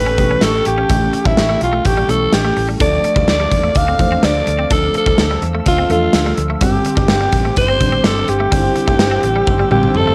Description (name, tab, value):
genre	1980s-style pop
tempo	126 BPM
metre	4/4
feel	straight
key	unclear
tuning	A4 = 441 Hz
part	breathy alto saxophone	melody	0.0-10.1 s	E4 to F5	-19 LUFS	equal	cassette tape
part	mellow FM electric piano	accompaniment	0.0-10.1 s	D3 to C5	-24 LUFS	equal	chorus, phaser
part	phased analog pad	sustained chords	0.0-10.1 s	A4 to E6	-29 LUFS	equal	phaser, chorus
part	vintage muted fingered electric bass	bass	0.0-10.1 s	G1 to E2	-23 LUFS	equal	none
part	clean electric guitar	riff	0.1-10.1 s	G3 to D4	-29 LUFS	equal	subtle chorus
part	gated 80s drum kit	drums	0.2-10.1 s	hi-hat, kick drum, snare drum, toms	-19 LUFS	equal	cassette tape
part	warm studio violin section	second line	9.7-10.1 s	G5 to A5	-26 LUFS	equal	none
room	light reverb, studio reverb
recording	home recording on cassette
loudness	-15 LUFS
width	mono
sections	0.0-10.1 A section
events	drum fill 9.5-10.1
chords	0.0 A7; 2.8 Dm; 6.6 Gsus4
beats	0.42 | 0.90 1.38 1.85 2.33 | 2.81 3.28 3.76 4.23 | 4.71 5.19 5.66 6.14 | 6.62 7.09 7.57 8.04 | 8.52 9.00 9.47 9.95